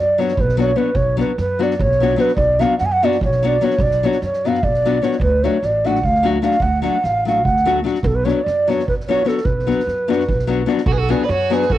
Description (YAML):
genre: balkan folk, Balkan wedding band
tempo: 297 BPM (eighths)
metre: 7/8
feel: straight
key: B minor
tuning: A4 = 440 Hz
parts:
  - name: breathy mellow ney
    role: melody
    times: 0.0-11.8 s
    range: A4 to G#5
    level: -18 LUFS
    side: right 2 dB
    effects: cassette tape
  - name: upright bass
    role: bass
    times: 0.0-11.8 s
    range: A1 to F#2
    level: -22 LUFS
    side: right 1 dB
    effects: none
  - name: nylon-string guitar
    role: accompaniment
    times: 0.2-11.6 s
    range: F#3 to F#4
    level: -20 LUFS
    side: left 6 dB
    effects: none
  - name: soft-mallet drum kit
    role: percussion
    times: 0.2-11.8 s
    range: kick drum, snare drum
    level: -25 LUFS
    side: right 2 dB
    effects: none
  - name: clear violin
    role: second line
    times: 10.9-11.8 s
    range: F#4 to B4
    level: -24 LUFS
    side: right 10 dB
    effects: tape echo
room: moderate spring reverb, RT60 1.3 s, studio reverb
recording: home recording on cassette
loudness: -15 LUFS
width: side -13 dB against mid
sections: 0.0-10.9 A section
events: none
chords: 0.0 Bm; 5.2 D; 8.0 Bm